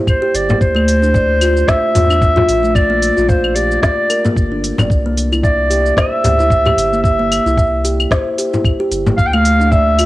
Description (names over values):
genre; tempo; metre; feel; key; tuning
organic downtempo; 112 BPM; 4/4; swing 56% on 16ths; C mixolydian; A4 = 440 Hz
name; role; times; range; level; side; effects
kalimba; arpeggios; 0.0-10.1 s; A3 to F5; -17 LUFS; left 1 dB; cassette tape, tape echo
warm clarinet; melody; 0.1-10.1 s; C5 to G5; -16 LUFS; equal; cassette tape, tape echo
electronic kick drum; drums; 0.1-9.8 s; none; -15 LUFS; equal; cassette tape
organic electronic drum kit; drums; 0.1-10.1 s; claves, hi-hat, shaker, snare drum; -21 LUFS; left 1 dB; cassette tape
round analog bass; bass; 0.3-10.1 s; F1 to E2; -18 LUFS; equal; sidechain pumping
frame drum; percussion; 0.5-9.2 s; none; -17 LUFS; left 1 dB; none
room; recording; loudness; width
light reverb; home recording on cassette; -11 LUFS; side -17 dB against mid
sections
0.0-10.1 A section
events
none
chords
0.0 C7; 0.6 Dm7; 2.8 Bb6; 4.9 C7; 9.2 Dm